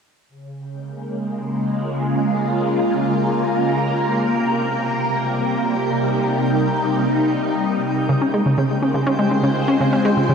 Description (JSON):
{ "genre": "ambient, sequencer-driven space music", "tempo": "123 BPM", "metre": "4/4", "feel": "straight", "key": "Bb dorian", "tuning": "A4 = 439 Hz", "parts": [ { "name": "phased string machine", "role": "sustained chords", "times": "0.3-10.3 s", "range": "C3 to C5", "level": "-19 LUFS", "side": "equal", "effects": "ensemble chorus, phaser, shimmer reverb" }, { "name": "twinkling granular texture", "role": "texture", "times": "1.4-10.3 s", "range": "G4 to G5", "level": "-32 LUFS", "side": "right 2 dB", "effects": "built-in reverb, shimmer reverb" }, { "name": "analog pluck", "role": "riff", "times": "8.1-10.3 s", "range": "Db3 to Db4", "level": "-18 LUFS", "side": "equal", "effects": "chorus, ping-pong delay, shimmer reverb" } ], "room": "wet huge ambient reverb, RT60 7.8 s", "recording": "in a vast, echoing space, cassette tape", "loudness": "-17 LUFS", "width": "side -6 dB against mid", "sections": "0.3-10.3 A section", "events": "fade-in on synth texture 0.3-10.3", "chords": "0.3 Bbm7; 4.2 Cm7; 8.1 Dbmaj7" }